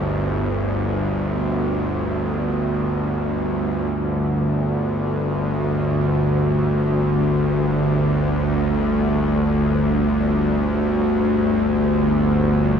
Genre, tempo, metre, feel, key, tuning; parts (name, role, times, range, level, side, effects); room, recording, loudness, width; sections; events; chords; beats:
ambient; free time; A4 = 440 Hz
bowed-like drone; solo; 0.0-12.8 s; G1 to D2; -18 LUFS; equal; built-in reverb, tape echo
wet cathedral reverb, RT60 6.7 s; -18 LUFS; side -7 dB against mid
0.0-3.9 A section; 3.9-12.8 B section
0.0 G5
free time